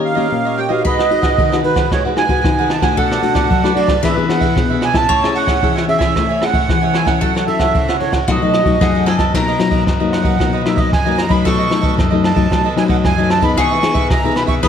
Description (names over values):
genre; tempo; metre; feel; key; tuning
samba and choro; 113 BPM; 4/4; straight; B major from 9.3 s; A4 = 440 Hz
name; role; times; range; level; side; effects
accordion; melody; 0.0-14.7 s; B4 to D#6; -18 LUFS; right 5 dB; light tremolo tuning
mandolin; second line; 0.0-14.7 s; F#4 to C#5; -24 LUFS; left 3 dB; none
cavaquinho; accompaniment; 0.0-14.7 s; D4 to G#5; -23 LUFS; right 6 dB; none
nylon-string guitar; accompaniment; 0.0-14.7 s; F#2 to B4; -18 LUFS; left 6 dB; none
jazz brush drum kit; drums; 0.9-14.7 s; crash cymbal, kick drum, ride cymbal, rim click; -18 LUFS; equal; none
room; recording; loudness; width
moderate studio reverb, RT60 0.8 s; dark, warm production; -12 LUFS; side -8 dB against mid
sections
0.0-9.3 A section; 9.3-14.7 B section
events
none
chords
0.0 D#7; 0.9 G#m7; 3.0 Bm7; 4.0 E7; 5.1 Amaj7; 7.2 F#m7; 8.3 B7; 9.3 Bmaj7; 11.5 B7; 13.6 Emaj7